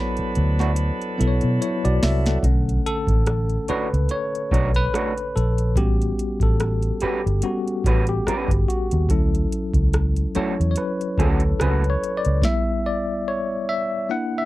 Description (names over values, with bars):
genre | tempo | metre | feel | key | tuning
R&B, neo-soul | 72 BPM | 4/4 | swing 57% on 16ths | B minor | A4 = 442 Hz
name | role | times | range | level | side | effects
bell-like tine electric piano | accompaniment | 0.0-14.5 s | D3 to F#5 | -24 LUFS | left 2 dB | fast stereo tremolo
tonewheel organ | sustained chords | 0.0-2.4 s | A4 to B5 | -33 LUFS | right 1 dB | stopped rotary speaker
mellow horn section | stabs | 0.0-2.0 s | F#3 to B4 | -32 LUFS | right 4 dB | none
vintage muted fingered electric bass | bass | 0.2-12.4 s | G1 to B2 | -20 LUFS | equal | none
booming analog drum machine | drums | 0.2-12.7 s | hi-hat, kick drum, rim click, snare drum | -24 LUFS | equal | overdrive
electric guitar through a small old amp | second line | 0.6-11.8 s | F#3 to C#5 | -26 LUFS | right 4 dB | warbly pitch drift
room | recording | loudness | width
little or no reverb | dry, close 1970s-style studio recording | -19 LUFS | side -17 dB against mid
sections
0.0-2.4 A section; 2.4-14.5 B section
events
drum fill 0.8-2.4; tine electric piano solo 2.4-14.5; stop 12.4-14.5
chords
0.0 Bm7; 2.4 Bm9; 5.8 A13; 9.1 Dmaj7; 12.4 G6